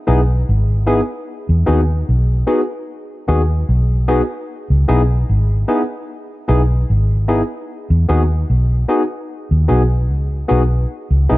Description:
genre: lovers rock reggae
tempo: 75 BPM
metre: 4/4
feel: straight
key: unclear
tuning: A4 = 438 Hz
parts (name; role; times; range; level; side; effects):
- barky tine electric piano; accompaniment; 0.1-11.4 s; B3 to G#4; -20 LUFS; left 1 dB; overdrive, lush chorus
- vintage muted fingered electric bass; bass; 0.1-11.4 s; G#1 to E2; -14 LUFS; equal; none
room: light reverb, digital ambience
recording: dark, warm production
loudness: -14 LUFS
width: side -18 dB against mid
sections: 0.0-11.4 A section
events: none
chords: 0.0 C#m7 (rootless); 1.3 Emaj7 (rootless); 4.5 C#m7 (rootless); 7.7 Emaj7 (rootless)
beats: 0.47 | 1.27 2.07 2.87 3.67 | 4.47 5.28 6.08 6.88 | 7.68 8.48 9.28 10.09 | 10.89

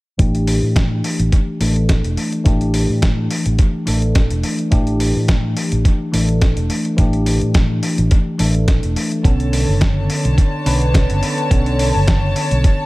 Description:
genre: nu-disco, nu disco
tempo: 106 BPM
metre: 4/4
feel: swing 54% on 16ths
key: A mixolydian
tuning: A4 = 444 Hz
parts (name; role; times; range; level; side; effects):
- tine electric piano; accompaniment; 0.2-12.9 s; D3 to B4; -20 LUFS; equal; phaser, sidechain pumping, low-pass filter, dub echo
- fingered electric bass with an envelope filter; bass; 0.2-12.6 s; E1 to A2; -18 LUFS; equal; none
- dusty soul sampler-style drum kit; drums; 0.2-12.8 s; hi-hat, snare drum; -24 LUFS; equal; dub echo
- electronic kick drum; drums; 0.2-12.8 s; none; -14 LUFS; equal; none
- warm studio string section; sustained chords; 9.2-12.9 s; D3 to A5; -22 LUFS; left 1 dB; sidechain pumping
room: light reverb, digital ambience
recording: echo-heavy mix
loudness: -14 LUFS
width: side -20 dB against mid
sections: 0.2-12.9 A section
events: filter sweep on tine electric piano 0.2-12.9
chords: 0.2 A7sus4; 9.2 Bm9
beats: | 0.19 0.76 1.32 1.89 | 2.46 3.02 3.59 4.15 | 4.72 5.29 5.85 6.42 | 6.99 7.55 8.12 8.68 | 9.25 9.81 10.38 10.95 | 11.51 12.08 12.64

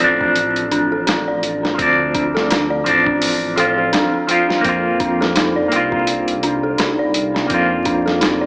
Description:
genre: trip hop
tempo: 84 BPM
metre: 4/4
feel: swing 57% on 16ths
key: D minor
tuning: A4 = 439 Hz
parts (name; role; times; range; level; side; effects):
- electric guitar with an envelope filter; accompaniment; 0.0-8.5 s; F3 to F4; -17 LUFS; equal; tremolo, tape echo
- dark detuned synth bell; arpeggios; 0.0-8.5 s; D4 to D5; -19 LUFS; equal; chorus, digital delay
- dark detuned saw bass; bass; 0.0-8.5 s; D1 to F2; -27 LUFS; equal; tube saturation
- boom bap sampler-style drum kit; drums; 0.0-8.4 s; hi-hat, kick drum, snare drum; -21 LUFS; equal; none
room: light reverb, digital ambience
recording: vinyl crackle, small speaker sound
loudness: -14 LUFS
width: side -29 dB against mid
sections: 0.0-8.5 A section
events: none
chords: 0.0 Dm7; 4.6 Fsus4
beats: 0.36 1.07 | 1.79 2.50 3.22 3.93 | 4.65 5.36 6.07 6.79 | 7.50 8.22

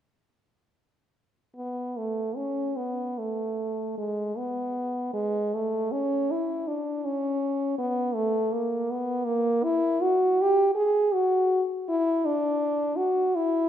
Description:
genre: classical, free, expressive piece for unaccompanied French horn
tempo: 48-56 BPM (dotted quarters)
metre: 6/8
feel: rubato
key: unclear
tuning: A4 = 441 Hz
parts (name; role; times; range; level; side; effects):
- warm French horn; solo; 1.6-13.7 s; G#3 to G#4; -24 LUFS; equal; none
room: moderate scoring stage reverb, RT60 1.9 s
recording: minimal, uncompressed stereo recording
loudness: -24 LUFS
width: side -10 dB against mid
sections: 1.6-13.7 A section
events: none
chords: none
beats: | 1.55 2.79 | 3.99 5.16 | 6.29 7.42 | 8.54 9.64 | 10.77 11.90 | 12.97

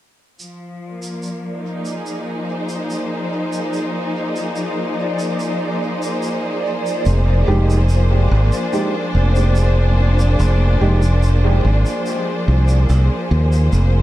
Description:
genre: ambient dub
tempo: 72 BPM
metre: 4/4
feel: straight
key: F dorian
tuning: A4 = 440 Hz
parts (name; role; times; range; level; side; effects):
- clear studio string section; sustained chords; 0.4-14.0 s; F3 to C5; -21 LUFS; left 1 dB; none
- shaker; drums; 0.4-13.9 s; none; -38 LUFS; right 3 dB; dub echo
- backwards swelling texture; texture; 1.3-13.7 s; D5; -30 LUFS; right 2 dB; built-in reverb
- modern bright fingered electric bass; bass; 7.1-14.0 s; F1 to Eb2; -13 LUFS; equal; none
- dark upright piano; stabs; 7.5-11.0 s; Ab3 to G4; -25 LUFS; right 2 dB; dub echo
room: studio ambience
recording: dark, warm production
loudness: -15 LUFS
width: side -15 dB against mid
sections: 0.4-13.7 A section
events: none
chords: 0.4 Fm7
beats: | 0.40 1.23 2.06 2.90 | 3.73 4.56 5.40 6.23 | 7.06 7.90 8.73 9.56 | 10.40 11.23 12.06 12.90 | 13.73

